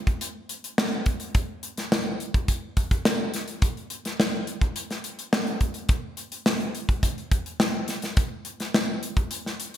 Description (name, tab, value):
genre	pop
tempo	106 BPM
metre	4/4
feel	straight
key	none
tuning	none
part	modern studio drum kit	drums	0.1-9.8 s	hi-hat, kick drum, snare drum	-24 LUFS	equal	gated reverb
room	moderate plate reverb, RT60 1.8 s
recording	bright 1980s-style digital production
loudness	-24 LUFS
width	side -11 dB against mid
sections	0.0-9.8 A section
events	none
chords	none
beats	0.21 0.78 | 1.35 1.92 2.48 3.05 | 3.62 4.19 4.76 5.33 | 5.90 6.46 7.03 7.60 | 8.17 8.74 9.31